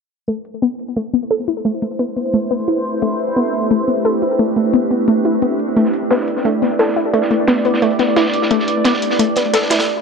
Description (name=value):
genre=dark technical drum and bass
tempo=175 BPM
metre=4/4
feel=straight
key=A minor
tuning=A4 = 440 Hz
part: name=sweeping resonant pad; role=sustained chords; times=0.3-10.0 s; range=A3 to D5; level=-20 LUFS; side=right 2 dB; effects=chorus
part: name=warbly dusty pluck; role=arpeggios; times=0.3-9.8 s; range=A3 to A4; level=-17 LUFS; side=left 2 dB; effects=chorus, ping-pong delay
part: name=electronic hi-hat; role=drums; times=0.3-9.8 s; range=none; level=-28 LUFS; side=equal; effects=none
part: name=granular cloud pad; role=texture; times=2.3-9.9 s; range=A3 to E5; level=-23 LUFS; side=right 1 dB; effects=built-in reverb
part: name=crunchy breakbeat drum kit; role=drums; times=5.8-9.9 s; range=hi-hat, snare drum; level=-23 LUFS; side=right 2 dB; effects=high-pass filter on hats, high-pass filter on snare, high-pass filter on room
room=moderate lush hall reverb, RT60 1.9 s, small room ambience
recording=low-pass filter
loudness=-14 LUFS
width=side -5 dB against mid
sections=0.3-10.0 A section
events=fade-in on ambient pad 0.3-10.0; filter sweep on synth arpeggio sound 0.3-10.0; filter sweep 0.3-10.0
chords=0.3 Amadd9